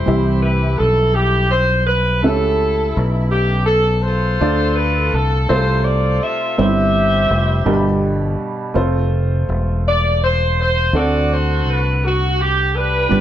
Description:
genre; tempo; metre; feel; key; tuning
slow gospel; 55 BPM (dotted quarters); 6/8; straight; C major; A4 = 440 Hz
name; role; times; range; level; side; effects
mellow saxophone section; melody; 0.0-13.2 s; D4 to E5; -18 LUFS; equal; plate reverb
warm upright piano; accompaniment; 0.0-13.2 s; G2 to B5; -21 LUFS; right 1 dB; none
fingered electric bass; bass; 0.0-13.2 s; E1 to D2; -18 LUFS; equal; none
room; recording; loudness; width
moderate large studio reverb, RT60 1.0 s; none; -14 LUFS; side -11 dB against mid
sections
0.1-13.2 A section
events
none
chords
0.1 C; 2.2 A7; 4.4 Dm; 5.5 F/C; 6.6 C/G; 7.7 G; 8.8 F; 10.9 D7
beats
| 0.06 1.15 | 2.24 3.32 | 4.41 5.50 | 6.58 7.67 | 8.76 9.85 | 10.94 12.02 | 13.11

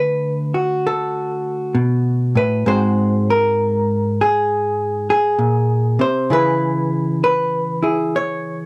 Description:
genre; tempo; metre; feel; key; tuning
solo jazz; 66 BPM; 4/4; swing 67% on 8ths; unclear; A4 = 440 Hz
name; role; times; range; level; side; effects
hollow-body jazz guitar; solo; 0.0-8.7 s; G#2 to C#5; -18 LUFS; equal; none
room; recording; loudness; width
light reverb; dry, close 1970s-style studio recording; -18 LUFS; mono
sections
0.0-8.7 A section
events
none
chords
0.0 Dmaj7; 2.6 G#7; 6.3 C#m7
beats
0.83 1.74 | 2.65 3.56 4.47 5.38 | 6.30 7.21 8.12

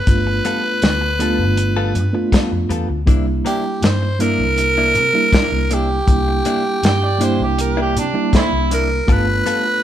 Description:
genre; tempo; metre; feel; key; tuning
straight-eighth soul blues; 80 BPM; 4/4; straight; unclear; A4 = 441 Hz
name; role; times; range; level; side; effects
growling tenor saxophone; melody; 0.0-9.8 s; G4 to C5; -19 LUFS; right 1 dB; none
mellow reed electric piano; accompaniment; 0.1-9.8 s; G3 to F4; -22 LUFS; right 3 dB; fast tremolo
vintage muted fingered electric bass; bass; 0.1-9.4 s; G1 to C3; -20 LUFS; equal; none
warm soul drum kit; drums; 0.1-9.6 s; hi-hat, kick drum, snare drum; -17 LUFS; left 1 dB; none
direct-recorded clean electric guitar; stabs; 0.3-9.7 s; C3 to A4; -26 LUFS; left 5 dB; none
overdriven harmonica; second line; 6.9-8.7 s; A3 to G5; -21 LUFS; right 3 dB; none
room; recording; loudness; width
moderate large studio reverb, RT60 1.1 s; band playing live in one room; -14 LUFS; side -11 dB against mid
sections
0.0-9.8 A section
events
none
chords
0.0 G9; 3.1 C9; 9.1 G9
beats
| 0.07 0.83 1.58 2.33 | 3.08 3.83 4.58 5.33 | 6.08 6.83 7.58 8.33 | 9.09

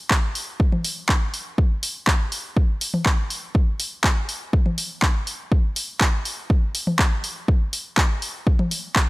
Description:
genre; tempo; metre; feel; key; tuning
techno; 122 BPM; 4/4; straight; none; none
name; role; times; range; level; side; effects
electronic kick drum; drums; 0.1-9.1 s; none; -19 LUFS; equal; overdrive, small room reverb
techno drum kit; drums; 0.1-9.1 s; handclaps, hi-hat, toms; -23 LUFS; equal; overdrive, small room reverb
room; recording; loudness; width
digital ambience; dry, gritty hardware recording; -20 LUFS; side -21 dB against mid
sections
0.0-9.1 A section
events
none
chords
none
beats
0.11 0.60 1.09 | 1.58 2.07 2.57 3.06 | 3.55 4.04 4.53 5.03 | 5.52 6.01 6.50 6.99 | 7.48 7.98 8.47 8.96

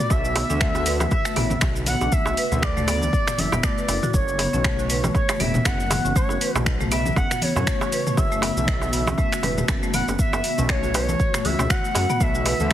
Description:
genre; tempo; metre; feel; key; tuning
afro house; 119 BPM; 4/4; swing 56% on 16ths; unclear; A4 = 438 Hz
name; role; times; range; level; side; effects
expressive portamento lead; melody; 0.0-12.7 s; C#5 to F#5; -26 LUFS; equal; wide subtle chorus, ping-pong delay
ethereal airy pad; sustained chords; 0.0-12.7 s; C#3 to F#4; -33 LUFS; right 2 dB; ensemble chorus, built-in reverb, sidechain pumping
deep house drum kit; drums; 0.0-12.7 s; finger snaps, hi-hat, shaker, toms; -26 LUFS; equal; studio reverb
dark detuned saw bass; bass; 0.1-12.7 s; E1 to F#2; -26 LUFS; equal; sidechain pumping
electronic kick drum; drums; 0.1-12.7 s; none; -24 LUFS; equal; studio reverb
darbuka; percussion; 0.1-12.7 s; none; -29 LUFS; right 3 dB; none
marimba with hard mallets; arpeggios; 0.4-12.7 s; A3 to B4; -28 LUFS; left 2 dB; sidechain pumping, ping-pong delay
congas; percussion; 0.5-12.7 s; none; -30 LUFS; left 1 dB; none
room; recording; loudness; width
light reverb; heavily compressed radio sound; -19 LUFS; side -12 dB against mid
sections
0.0-12.7 A section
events
none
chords
0.0 Bm7; 4.1 F#7sus4; 12.2 Bm7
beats
| 0.10 0.61 1.11 1.62 | 2.12 2.63 3.13 3.63 | 4.14 4.64 5.15 5.65 | 6.16 6.66 7.16 7.67 | 8.17 8.68 9.18 9.69 | 10.19 10.69 11.20 11.70 | 12.21 12.71

